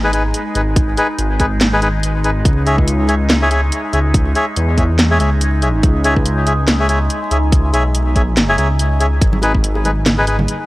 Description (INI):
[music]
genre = deep dubstep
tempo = 142 BPM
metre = 4/4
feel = swing 57% on 16ths, half-time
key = unclear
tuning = A4 = 440 Hz
[part]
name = overtone-sweeping drone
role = sustained chords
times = 0.0-10.7 s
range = G#3 to D#4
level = -23 LUFS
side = equal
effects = chorus, built-in reverb, phaser
[part]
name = melodica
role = stabs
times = 0.0-10.4 s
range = D#4 to E5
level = -19 LUFS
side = left 1 dB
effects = dub echo
[part]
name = dark detuned saw bass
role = bass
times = 0.0-10.5 s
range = G#1 to E2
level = -16 LUFS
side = equal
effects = none
[part]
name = garage drum kit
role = drums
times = 0.1-10.6 s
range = hi-hat, snare drum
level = -18 LUFS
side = equal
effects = none
[part]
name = electronic kick drum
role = drums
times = 0.8-9.6 s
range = none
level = -14 LUFS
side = equal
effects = none
[part]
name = congas and bongos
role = percussion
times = 9.3-10.5 s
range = none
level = -23 LUFS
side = right 1 dB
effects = none
[sound]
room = light reverb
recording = dry, gritty hardware recording, vinyl crackle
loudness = -12 LUFS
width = side -18 dB against mid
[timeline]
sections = 0.0-10.7 A section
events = kick drops out 8.8-9.2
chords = 0.0 G#m; 2.5 C#m; 9.2 G#m